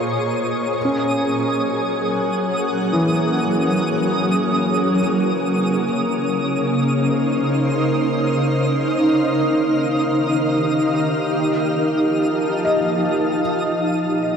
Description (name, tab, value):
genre	ambient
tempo	free time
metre	none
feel	none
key	unclear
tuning	A4 = 441 Hz
part	shimmering ambient pad	sustained chords	0.0-14.4 s	Bb2 to A5	-19 LUFS	equal	chorus, built-in reverb
part	felt-muted upright piano	arpeggios	0.0-5.8, 12.6-14.4 s	E3 to Eb5	-24 LUFS	left 1 dB	tape echo
part	organ-like drone	drone	0.0-14.4 s	Bb3 to Bb4	-26 LUFS	left 1 dB	ensemble chorus, built-in reverb
part	twinkling granular texture	texture	0.0-13.4 s	Eb6	-28 LUFS	right 2 dB	built-in reverb
room	wet huge ambient reverb, RT60 8.4 s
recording	in a vast, echoing space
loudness	-17 LUFS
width	side -7 dB against mid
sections	0.0-13.4 A section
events	none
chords	0.0 Bbm7; 0.8 Gbsus2; 5.0 Dbmaj7; 9.2 Ebadd9; 11.3 F7; 13.4 Bb5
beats	free time